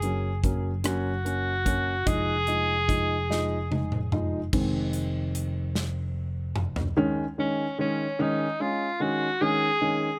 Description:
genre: six-eight pop ballad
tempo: 49 BPM (dotted quarters)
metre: 6/8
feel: straight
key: unclear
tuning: A4 = 441 Hz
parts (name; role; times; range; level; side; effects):
- clear tenor saxophone; melody; 0.0-10.2 s; Db4 to Ab4; -30 LUFS; equal; tape echo
- dark baby grand piano; accompaniment; 0.0-10.1 s; Eb3 to Eb4; -31 LUFS; equal; none
- fingered electric bass; bass; 0.0-6.9 s; F1 to Gb1; -32 LUFS; equal; none
- modern studio drum kit; drums; 0.0-7.0 s; crash cymbal, hi-hat, kick drum, rim click, snare drum, toms; -32 LUFS; equal; none
room: small room ambience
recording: none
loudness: -27 LUFS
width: mono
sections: 0.0-4.5 A section; 4.5-7.0 B section; 7.0-10.2 C section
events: drum fill 3.3-4.5, 5.7-7.0; grand piano solo 4.5-7.0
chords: 0.0 Gb; 2.1 Fm7; 7.0 Absus4

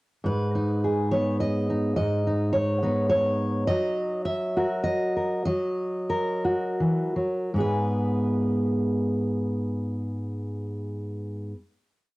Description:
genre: folk, solo fingerstyle acoustic guitar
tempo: 78-105 BPM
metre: 3/4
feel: straight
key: G# minor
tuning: A4 = 437 Hz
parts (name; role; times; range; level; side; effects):
- fingerpicked steel-string acoustic guitar; solo; 0.2-11.6 s; G#2 to E5; -24 LUFS; equal; cassette tape
room: moderate studio reverb, RT60 0.6 s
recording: home recording on cassette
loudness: -24 LUFS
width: side -21 dB against mid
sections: 0.2-7.5 A section; 7.5-12.1 final chord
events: slowing down 3.7-7.5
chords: 0.2 G#m; 3.7 D#m/F#; 7.5 G#m

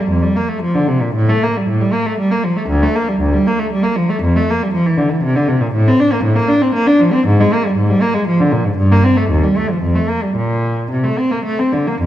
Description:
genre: classical, baroque-style suite movement for unaccompanied cello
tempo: 104-120 BPM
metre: 3/4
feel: rubato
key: unclear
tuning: A4 = 436 Hz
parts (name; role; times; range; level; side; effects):
- rich cello; solo; 0.0-12.1 s; D2 to D4; -13 LUFS; equal; none
room: moderate recital hall reverb, RT60 1.7 s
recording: dark, warm production, lossy compression artefacts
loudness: -13 LUFS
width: side -12 dB against mid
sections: 0.0-12.0 A section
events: none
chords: none

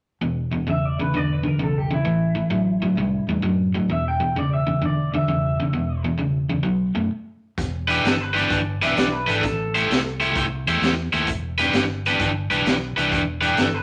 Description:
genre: electric blues shuffle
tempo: 130 BPM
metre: 4/4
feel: swing 68% on 8ths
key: E minor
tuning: A4 = 442 Hz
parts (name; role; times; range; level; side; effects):
- cranked stack guitar; riff; 0.2-13.7 s; E2 to C5; -23 LUFS; equal; overdrive
- fingered electric bass; bass; 0.2-13.8 s; E1 to F#2; -31 LUFS; equal; none
- electric guitar through a small old amp; melody; 0.7-10.3, 13.4-13.8 s; E4 to G5; -30 LUFS; equal; spring reverb
- raw garage drum kit; drums; 7.6-13.7 s; hi-hat, kick drum, snare drum; -28 LUFS; equal; none
room: wet studio reverb, RT60 0.8 s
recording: none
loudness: -22 LUFS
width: mono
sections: 0.2-7.6 A section; 7.6-13.8 B section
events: stop 7.1-7.6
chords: 0.2 E5; 2.1 Am7; 3.9 E5; 6.7 B5; 7.6 Em7; 9.4 Am7; 11.3 Em7

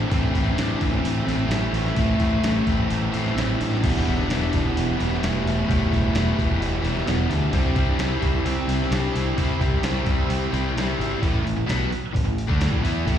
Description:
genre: classic rock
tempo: 130 BPM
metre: 4/4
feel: straight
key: A minor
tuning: A4 = 440 Hz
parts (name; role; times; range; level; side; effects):
- lead guitar through a small cranked amp; melody; 0.0-9.6 s; A3 to E4; -28 LUFS; right 2 dB; overdrive, slapback echo, analog delay
- tonewheel organ; sustained chords; 0.0-11.2 s; B3 to C5; -39 LUFS; right 2 dB; none
- overdriven semi-hollow guitar; riff; 0.0-13.2 s; A2 to E4; -27 LUFS; left 10 dB; slapback echo
- tight distorted guitar; riff; 0.0-13.2 s; E2 to E4; -30 LUFS; right 15 dB; distortion
- growling fingered electric bass; bass; 0.0-13.2 s; E1 to E2; -24 LUFS; right 1 dB; overdrive
- boom bap sampler-style drum kit; drums; 0.1-13.2 s; crash cymbal, hi-hat, kick drum, snare drum; -26 LUFS; equal; none
room: light reverb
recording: live gig heard through the venue's PA, recital hall reverb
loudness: -20 LUFS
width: side -9 dB against mid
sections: 0.0-11.2 A section; 11.2-13.2 B section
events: kick and snare drop out 11.0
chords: 0.0 Am; 3.8 Em; 7.5 C; 11.2 A5

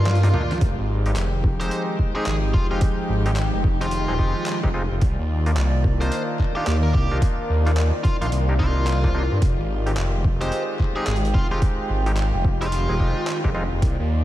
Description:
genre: glitch hop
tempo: 109 BPM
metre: 4/4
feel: swing 62% on 16ths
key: F dorian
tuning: A4 = 440 Hz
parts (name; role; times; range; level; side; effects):
- biting lead guitar; melody; 0.0-13.4 s; F4 to C5; -31 LUFS; equal; overdrive, vintage 12-bit sampler grit, ping-pong delay
- warm chamber string section; sustained chords; 0.0-14.2 s; Eb3 to D5; -30 LUFS; left 1 dB; sidechain pumping
- bright clav; stabs; 0.0-13.6 s; Ab3 to Ab4; -30 LUFS; equal; sidechain pumping, ping-pong delay
- phased detuned saw bass; bass; 0.0-14.2 s; Eb1 to G2; -21 LUFS; equal; phaser, tube saturation
- swell; sound effects; 0.0-0.6 s; none; -35 LUFS; equal; none
- warbly tape-like pad; texture; 0.0-14.2 s; Eb3 to G5; -32 LUFS; right 1 dB; chorus, built-in reverb, phaser, sidechain pumping
- boom bap sampler-style drum kit; drums; 0.1-14.0 s; handclaps, hi-hat, rim click, snare drum, toms; -31 LUFS; equal; overdrive
- electronic kick drum; drums; 0.6-14.0 s; none; -21 LUFS; equal; overdrive
room: light reverb, digital ambience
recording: none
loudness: -19 LUFS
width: side -14 dB against mid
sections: 0.0-14.2 A section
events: drum fill 0.0-0.6; swell 0.0-0.6; break 0.1-0.6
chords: 0.0 Cm11 (rootless); 0.6 Fm9; 5.0 Cm11; 9.4 Fm9

